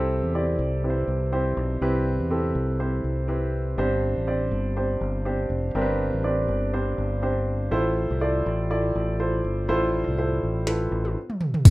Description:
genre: piano-driven pop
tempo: 122 BPM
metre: 4/4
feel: swing 56% on 16ths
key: unclear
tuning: A4 = 440 Hz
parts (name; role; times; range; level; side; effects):
- warm upright piano; accompaniment; 0.0-11.2 s; G2 to D5; -25 LUFS; right 1 dB; none
- fingered electric bass; bass; 0.0-11.7 s; E1 to E2; -26 LUFS; equal; none
- minimal click drum kit; drums; 10.7-11.7 s; crash cymbal, hi-hat, kick drum, snare drum, toms; -15 LUFS; equal; none
room: moderate studio reverb, RT60 0.5 s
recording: rough home demo mix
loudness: -22 LUFS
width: side -20 dB against mid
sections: 0.0-11.7 A section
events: drum fill 10.7-11.7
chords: 0.0 C; 3.8 Gsus4; 7.7 Fmaj7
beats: 0.34 0.83 1.32 | 1.82 2.31 2.80 3.29 | 3.78 4.28 4.77 5.26 | 5.75 6.24 6.74 7.23 | 7.72 8.21 8.70 9.19 | 9.69 10.18 10.67 11.16 | 11.65

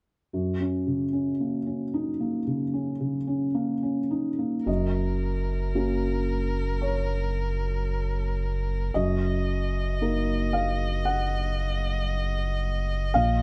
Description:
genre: neoclassical piano and strings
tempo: 56 BPM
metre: 4/4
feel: rubato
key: F# major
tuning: A4 = 440 Hz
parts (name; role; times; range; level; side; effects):
- felt-muted upright piano; accompaniment; 0.3-13.4 s; F#2 to F#5; -30 LUFS; equal; none
- rich violin; melody; 4.7-13.4 s; A#4 to D#5; -36 LUFS; equal; none
- sub bass with octave; bass; 4.7-13.4 s; F#1 to A#1; -30 LUFS; equal; none
room: little or no reverb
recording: close, detailed microphones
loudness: -27 LUFS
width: mono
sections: 0.3-4.7 A section; 4.7-13.4 B section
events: none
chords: 0.3 F#6; 9.0 D#m/F#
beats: | 0.34 1.41 2.48 3.56 | 4.67 5.75 6.82 7.88 | 8.95 10.01 11.06 12.11 | 13.15

